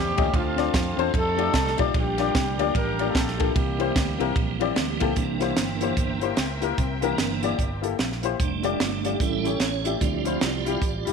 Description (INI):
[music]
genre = uptempo gospel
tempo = 149 BPM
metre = 4/4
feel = swing 60% on 8ths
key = unclear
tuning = A4 = 445 Hz
[part]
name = mellow horn section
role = melody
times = 0.0-4.6 s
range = F3 to Bb4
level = -28 LUFS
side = equal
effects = none
[part]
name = warm upright piano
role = accompaniment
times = 0.0-11.1 s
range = A2 to E5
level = -27 LUFS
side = left 11 dB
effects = none
[part]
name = tonewheel organ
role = sustained chords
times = 0.0-11.1 s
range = C#3 to D5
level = -30 LUFS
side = right 10 dB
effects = fast rotary speaker, overdrive, chorus vibrato
[part]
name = fingered electric bass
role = bass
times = 0.0-11.1 s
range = F1 to F2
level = -31 LUFS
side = right 1 dB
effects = none
[part]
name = crisp fusion drum kit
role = drums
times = 0.2-11.1 s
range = hi-hat, kick drum, ride cymbal, snare drum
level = -26 LUFS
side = right 1 dB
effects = none
[part]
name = dark symphonic string section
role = sustained chords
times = 5.2-8.4 s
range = Bb4 to G5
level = -36 LUFS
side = left 2 dB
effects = none
[sound]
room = moderate echo chamber reverb, RT60 1.5 s, small room ambience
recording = 1960s-style stereo with parts hard left and right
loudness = -22 LUFS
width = side -6 dB against mid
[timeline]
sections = 0.0-5.2 A section; 5.2-8.4 B section; 8.4-11.1 C section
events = tonewheel organ solo 5.2-8.4, 8.4-11.1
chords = 0.3 Dm7; 1.1 F13; 1.9 Bb6; 3.6 C7; 8.4 F69; 9.2 A7; 10.0 Dm11